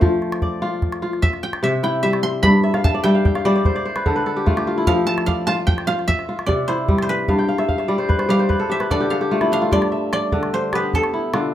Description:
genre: west african traditional, West African string and xylophone music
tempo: 99 BPM (dotted quarters)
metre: 12/8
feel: straight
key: F lydian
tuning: A4 = 440 Hz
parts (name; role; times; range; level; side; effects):
- koto; melody; 0.0-11.5 s; G4 to C6; -24 LUFS; right 2 dB; plate reverb
- kora; arpeggios; 0.0-11.5 s; G2 to G5; -19 LUFS; left 1 dB; none
- calabash; percussion; 0.0-11.4 s; none; -21 LUFS; equal; none
room: wet small room reverb, RT60 0.5 s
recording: rough home demo mix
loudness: -17 LUFS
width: side -11 dB against mid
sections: 0.0-9.7 A section; 9.7-11.5 B section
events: koto solo 0.0-9.7; kora fill 2.6-4.9, 7.3-9.7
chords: 0.0 F5; 1.2 C; 2.4 N.C.; 3.6 D5; 4.9 Fmaj13; 6.1 C; 7.3 N.C.; 8.5 D5; 9.7 G; 10.9 Dm

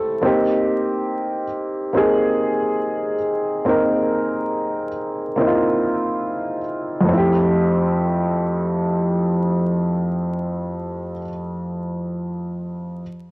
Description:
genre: hip hop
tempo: 70 BPM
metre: 4/4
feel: swing 55% on 16ths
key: F major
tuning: A4 = 440 Hz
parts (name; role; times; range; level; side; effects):
- dark upright piano; accompaniment; 0.0-13.0 s; F2 to Bb4; -18 LUFS; equal; low-pass filter
room: moderate spring reverb, RT60 2.4 s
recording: home recording on cassette, vinyl crackle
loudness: -18 LUFS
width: side -24 dB against mid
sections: 0.0-7.1 A section; 7.1-10.5 B section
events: none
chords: 0.2 Abmaj9; 7.1 Fmaj9

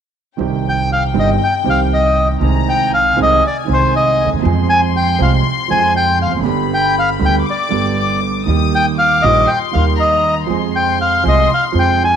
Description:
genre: tango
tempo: 119 BPM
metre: 4/4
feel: rubato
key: C minor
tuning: A4 = 441 Hz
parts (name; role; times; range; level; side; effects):
- rich chamber violin section; second line; 0.4-12.2 s; G5 to Eb6; -22 LUFS; left 10 dB; none
- warm concert grand piano; accompaniment; 0.4-12.2 s; G1 to Ab4; -18 LUFS; right 8 dB; none
- upright bass; bass; 0.4-12.2 s; E1 to F2; -19 LUFS; equal; none
- bandoneon; melody; 0.7-12.2 s; C5 to Ab5; -15 LUFS; left 1 dB; none
room: moderate echo chamber reverb, RT60 2.0 s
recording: 1960s-style stereo with parts hard left and right, lossy compression artefacts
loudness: -12 LUFS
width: side -8 dB against mid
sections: 0.4-12.2 A section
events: none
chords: 0.4 Cm; 2.4 Ab/C; 4.4 Fm; 6.4 G; 8.5 Eb; 10.5 Fm

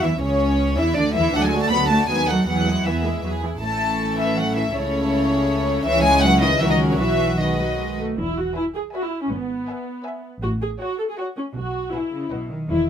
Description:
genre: quick classical-period movement for string orchestra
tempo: 159 BPM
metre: 3/4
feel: rubato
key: A major, E major from 5.9 s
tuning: A4 = 441 Hz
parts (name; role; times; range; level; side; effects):
- warm symphonic violin section; melody; 0.0-12.6 s; C#5 to B5; -22 LUFS; left 2 dB; none
- warm symphonic violin section; second line; 0.0-12.6 s; C#4 to E5; -28 LUFS; right 1 dB; none
- warm symphonic viola section; accompaniment; 0.0-12.9 s; E3 to A4; -25 LUFS; equal; none
- warm symphonic cello section; bass; 0.0-12.9 s; E2 to B3; -25 LUFS; right 1 dB; none
- warm symphonic double bass section; bass; 0.0-12.9 s; E1 to E2; -26 LUFS; right 1 dB; none
room: light reverb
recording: none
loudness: -19 LUFS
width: side -8 dB against mid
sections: 0.0-8.2 A section; 8.2-12.9 B section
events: none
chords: 0.2 C#m; 1.3 D; 2.1 B7/D#; 2.5 E; 3.6 A; 4.8 A/C#; 5.9 C#m; 6.6 F#7/C#; 7.0 B; 8.2 E; 9.3 E/G#; 10.4 F#m/A; 11.6 E/B; 12.3 B

